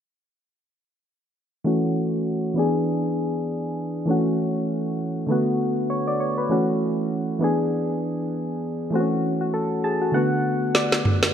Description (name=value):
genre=afrobeats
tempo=99 BPM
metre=4/4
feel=swing 58% on 16ths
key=unclear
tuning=A4 = 440 Hz
part: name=soft electric-piano-like synth keys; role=accompaniment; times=1.6-11.3 s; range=D3 to A5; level=-21 LUFS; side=equal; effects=chorus, low-pass filter
part: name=afro-pop drum kit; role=drums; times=10.7-11.3 s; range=snare drum, toms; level=-19 LUFS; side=right 1 dB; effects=gated reverb
room=moderate lush hall reverb, RT60 2.6 s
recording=bright 1980s-style digital production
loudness=-21 LUFS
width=side -8 dB against mid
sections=1.7-11.3 A section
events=filter sweep on synth keys 1.7-11.3; synth keys fill 9.5-11.3; drum fill 10.7-11.3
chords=1.7 F#m7; 2.6 E7; 4.1 A6; 5.3 D6; 6.5 F#m7; 7.4 E7; 8.9 A6; 10.1 D6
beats=| 1.66 2.26 2.87 3.48 | 4.08 4.69 5.29 5.90 | 6.50 7.11 7.72 8.32 | 8.93 9.54 10.14 10.75